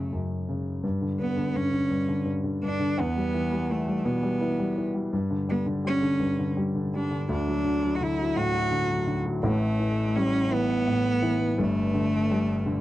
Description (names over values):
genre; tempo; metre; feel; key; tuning
pop; 56 BPM (dotted quarters); 6/8; straight; unclear; A4 = 436 Hz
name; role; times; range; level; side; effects
rich cello; melody; 0.0-12.8 s; A3 to F#4; -27 LUFS; right 1 dB; none
warm grand piano; accompaniment; 0.0-12.8 s; G1 to G3; -26 LUFS; left 1 dB; none
room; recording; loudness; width
little or no reverb; dry, close 1970s-style studio recording; -24 LUFS; side -15 dB against mid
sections
0.8-9.4 A section; 9.4-12.8 B section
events
grand piano fill 12.7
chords
0.0 F#5; 0.8 G5; 3.0 Em; 5.1 G5; 7.3 D; 9.4 A5; 11.6 Gsus2